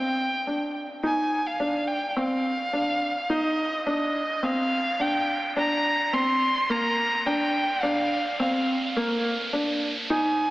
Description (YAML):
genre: piano and strings electronica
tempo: 106 BPM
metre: 4/4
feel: straight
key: unclear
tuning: A4 = 440 Hz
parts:
  - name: rich violin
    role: melody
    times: 0.0-10.5 s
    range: Eb5 to C6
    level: -26 LUFS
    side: equal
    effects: none
  - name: felt-muted upright piano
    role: riff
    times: 0.0-10.4 s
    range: Bb3 to Eb4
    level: -26 LUFS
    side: equal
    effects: digital delay
  - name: riser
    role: sound effects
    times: 0.8-10.1 s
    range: none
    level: -35 LUFS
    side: right 1 dB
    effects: none
  - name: round analog bass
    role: bass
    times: 10.1-10.5 s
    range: F1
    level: -48 LUFS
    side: equal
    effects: none
room: wet lush hall reverb, RT60 3.0 s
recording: AM radio sound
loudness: -23 LUFS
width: side -18 dB against mid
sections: 0.0-10.1 A section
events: build-up 0.0-10.1; riser 0.8-10.1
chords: 0.0 F7sus2/C; 5.6 Bb